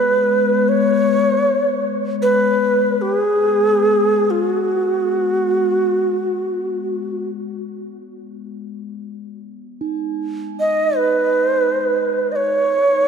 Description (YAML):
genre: world meditative, free-time meditation music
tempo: free time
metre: none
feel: none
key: B major pentatonic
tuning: A4 = 440 Hz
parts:
  - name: Native American-style cedar flute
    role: melody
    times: 0.0-13.1 s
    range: F#4 to D#5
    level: -16 LUFS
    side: right 1 dB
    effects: none
  - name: bronze singing bowl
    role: texture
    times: 0.0-13.1 s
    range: G#3 to D#4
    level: -24 LUFS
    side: left 6 dB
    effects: none
room: wet huge ambient reverb, RT60 4.6 s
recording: none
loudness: -15 LUFS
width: side -6 dB against mid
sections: 0.0-13.1 A section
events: none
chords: none